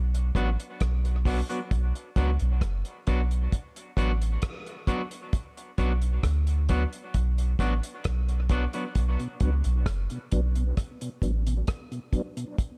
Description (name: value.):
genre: dub reggae.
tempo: 66 BPM.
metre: 4/4.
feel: straight.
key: B minor.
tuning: A4 = 439 Hz.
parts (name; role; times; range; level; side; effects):
soft dub sub bass; bass; 0.0-11.6 s; F#1 to D2; -27 LUFS; equal; none.
cloth-damped thuddy drum kit; drums; 0.1-12.8 s; hi-hat, kick drum, rim click; -31 LUFS; equal; none.
electric guitar at the edge of break-up; accompaniment; 0.4-8.8 s; F#3 to F#4; -36 LUFS; equal; dub echo.
mellow tonewheel organ; accompaniment; 9.2-12.4 s; B2 to D4; -37 LUFS; equal; chorus vibrato, slow rotary speaker, dub echo.
room: small room ambience.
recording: echo-heavy mix.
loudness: -28 LUFS.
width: mono.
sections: 0.0-12.8 A section.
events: break 0.0-1.7.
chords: 0.0 Bm.